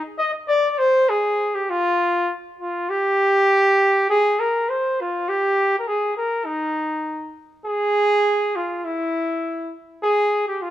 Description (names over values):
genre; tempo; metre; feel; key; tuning
alpine folk; 100 BPM; 2/4; straight; Eb major; A4 = 440 Hz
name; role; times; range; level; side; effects
warm flugelhorn; solo; 0.0-10.7 s; Eb4 to Eb5; -18 LUFS; equal; none
room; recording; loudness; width
moderate recital hall reverb, RT60 1.6 s; none; -18 LUFS; side -12 dB against mid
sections
0.0-7.6 A section; 7.6-10.7 B section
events
none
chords
none